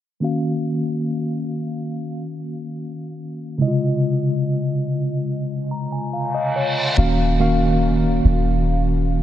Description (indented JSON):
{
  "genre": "R&B",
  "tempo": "71 BPM",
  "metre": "4/4",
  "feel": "straight",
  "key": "Eb dorian",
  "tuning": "A4 = 440 Hz",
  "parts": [
    { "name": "mellow tine electric piano", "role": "accompaniment", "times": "0.2-9.2 s", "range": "C3 to Bb5", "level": "-20 LUFS", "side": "equal", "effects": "medium stereo tremolo" },
    { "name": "reverse cymbal", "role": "sound effects", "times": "6.3-7.0 s", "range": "none", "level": "-28 LUFS", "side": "right 1 dB", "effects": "none" },
    { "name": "soft 808-style bass", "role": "bass", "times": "7.0-9.2 s", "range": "Eb1", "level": "-19 LUFS", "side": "equal", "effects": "none" }
  ],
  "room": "moderate huge ambient reverb, RT60 8.0 s",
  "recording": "dreamy mix soaked in reverb, low-pass filter",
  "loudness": "-19 LUFS",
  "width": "side -12 dB against mid",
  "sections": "0.2-7.0 A section; 7.0-9.2 B section",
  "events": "filter sweep 0.2-7.0; tine electric piano fill 5.3-7.0; reverse cymbal 6.3-7.0",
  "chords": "0.2 Ebm9; 3.6 Dbmaj7; 7.0 Ebm9"
}